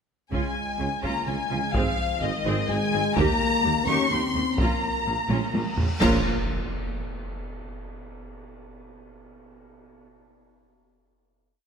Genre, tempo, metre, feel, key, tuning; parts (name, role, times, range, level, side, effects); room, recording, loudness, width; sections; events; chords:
cinematic, epic orchestral film score; 126 BPM; 3/4; straight; Bb dorian; A4 = 436 Hz
warm symphonic violin section; melody; 0.3-6.3 s; Eb5 to Db6; -29 LUFS; left 2 dB
rich studio violin section; second line; 0.3-6.3 s; Bb4 to Db6; -31 LUFS; left 4 dB
clear symphonic viola section; accompaniment; 0.3-6.3 s; Bb3 to Ab4; -32 LUFS; right 2 dB
mellow French horn section; sustained chords; 0.3-6.2 s; Eb3 to Db4; -30 LUFS; left 4 dB
mellow tuba; bass; 0.3-6.2 s; Ab1 to Eb2; -32 LUFS; right 4 dB
rich symphonic cello section; bass; 0.3-6.3 s; Eb2 to Db3; -33 LUFS; right 3 dB
warm symphonic double bass section; bass; 0.3-6.3 s; Ab1 to Eb2; -34 LUFS; right 3 dB
taiko ensemble; drums; 0.3-6.9 s; -29 LUFS; equal
cymbal swell, clash cymbals and concert bass drum; percussion; 3.2-6.9 s; -35 LUFS; equal
cymbal swell and impact; sound effects; 5.5-7.4 s; -39 LUFS; equal
moderate concert hall reverb, RT60 2.3 s; -22 LUFS; side -6 dB against mid
0.3-6.0 theme; 6.0-7.4 final chord
drum fill 5.3-6.0; cymbal swell 5.5-6.0; band accent 6.0-6.5; impact 6.0-7.4
0.3 Db; 1.7 Ab; 3.2 Eb; 4.6 Bbm